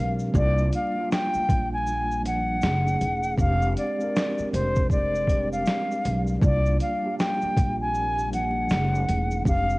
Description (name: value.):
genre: lo-fi hip hop.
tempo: 79 BPM.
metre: 4/4.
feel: swing 62% on 16ths.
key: F dorian.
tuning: A4 = 440 Hz.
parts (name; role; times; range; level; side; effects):
silver concert flute; melody; 0.0-9.8 s; C5 to Ab5; -26 LUFS; equal; cassette tape.
mellow tine electric piano; accompaniment; 0.0-9.8 s; F3 to Bb4; -30 LUFS; equal; medium stereo tremolo, cassette tape.
upright bass; bass; 0.0-9.8 s; E1 to C2; -26 LUFS; equal; none.
dusty soul sampler-style drum kit; drums; 0.2-9.8 s; finger snaps, hi-hat, kick drum, shaker, snare drum; -26 LUFS; equal; vintage 12-bit sampler grit, cassette tape.
deep dark ambient pad; sustained chords; 7.1-9.8 s; C3 to G4; -38 LUFS; equal; none.
room: light reverb.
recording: home recording on cassette, vinyl crackle, nothing above 10.8 kHz.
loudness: -22 LUFS.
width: side -22 dB against mid.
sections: 0.0-9.8 A section.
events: none.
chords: 0.3 C7sus4; 2.6 Gbm69; 3.4 Fm69; 6.4 C7sus4; 8.7 Gbm69.